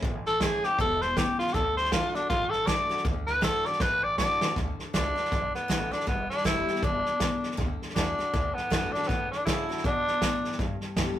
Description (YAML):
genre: rockabilly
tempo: 159 BPM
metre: 4/4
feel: swing 60% on 8ths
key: D major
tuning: A4 = 439 Hz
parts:
  - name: picked steel-string acoustic guitar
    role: accompaniment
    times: 0.0-11.2 s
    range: G2 to G4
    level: -36 LUFS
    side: left 4 dB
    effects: none
  - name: upright bass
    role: bass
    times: 0.0-11.2 s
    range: E1 to C#3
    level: -36 LUFS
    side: equal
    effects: none
  - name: vintage drum kit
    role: drums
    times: 0.0-11.1 s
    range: hi-hat, kick drum, snare drum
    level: -30 LUFS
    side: right 1 dB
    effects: none
  - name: breathy tenor saxophone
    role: melody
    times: 0.3-10.6 s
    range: B3 to D5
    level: -27 LUFS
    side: equal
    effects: none
room: moderate small room reverb, RT60 0.6 s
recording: rough rehearsal-room recording, warm saturation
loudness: -25 LUFS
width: side -12 dB against mid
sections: 0.0-4.6 A section; 4.6-11.2 B section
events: tenor saxophone solo 0.0-4.6; drum fill 3.8-4.6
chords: 0.0 A; 1.5 D; 6.1 G; 7.6 D; 10.6 G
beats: | 0.03 0.41 0.79 1.17 | 1.54 1.92 2.30 2.68 | 3.06 3.43 3.81 4.19 | 4.56 4.94 5.32 5.70 | 6.07 6.45 6.83 7.20 | 7.58 7.96 8.33 8.71 | 9.09 9.46 9.84 10.21 | 10.59 10.97